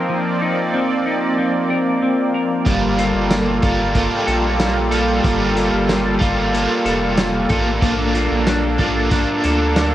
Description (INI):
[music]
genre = dream pop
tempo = 93 BPM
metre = 4/4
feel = straight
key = G minor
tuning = A4 = 442 Hz
[part]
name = warm analog pad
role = sustained chords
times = 0.0-9.9 s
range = F3 to D5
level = -20 LUFS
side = right 1 dB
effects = chorus, tremolo
[part]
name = clean electric guitar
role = arpeggios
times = 0.0-9.9 s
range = F3 to Bb4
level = -21 LUFS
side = left 2 dB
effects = wide subtle chorus, ping-pong delay
[part]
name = overdriven semi-hollow guitar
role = accompaniment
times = 2.6-9.9 s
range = G3 to A4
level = -22 LUFS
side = right 2 dB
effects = tremolo, lush chorus
[part]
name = round analog bass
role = bass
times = 2.7-9.9 s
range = F1 to D2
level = -23 LUFS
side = equal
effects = none
[part]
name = vintage drum kit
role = drums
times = 2.7-9.9 s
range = hi-hat, kick drum, snare drum, tambourine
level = -22 LUFS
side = equal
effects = none
[part]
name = twinkling granular texture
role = texture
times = 3.5-8.1 s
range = Bb3 to G4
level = -30 LUFS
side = left 1 dB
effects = none
[sound]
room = light reverb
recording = worn, warbling old tape, cassette tape, warbly pitch drift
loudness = -15 LUFS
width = side -13 dB against mid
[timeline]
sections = 0.0-9.9 A section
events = none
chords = 0.0 F7sus4; 2.7 Gm9; 7.8 Bbmaj7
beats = | 0.09 0.73 1.38 2.02 | 2.67 3.31 3.96 4.60 | 5.25 5.89 6.54 7.18 | 7.83 8.47 9.12 9.76